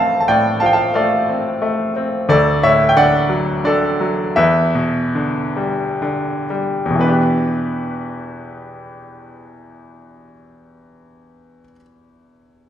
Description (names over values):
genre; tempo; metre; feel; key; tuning
classical, lyrical solo piano; 60-90 BPM; 3/4; rubato; E minor; A4 = 441 Hz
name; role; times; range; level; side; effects
bright grand piano; solo; 0.0-12.7 s; D2 to B5; -15 LUFS; equal; none
room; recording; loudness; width
wet recital hall reverb, RT60 1.6 s; recorded in a church or concert hall; -14 LUFS; side -10 dB against mid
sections
0.0-7.0 A section; 7.0-12.7 B section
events
slowing down 2.3-7.0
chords
0.0 F6/A; 2.3 D; 4.4 Em7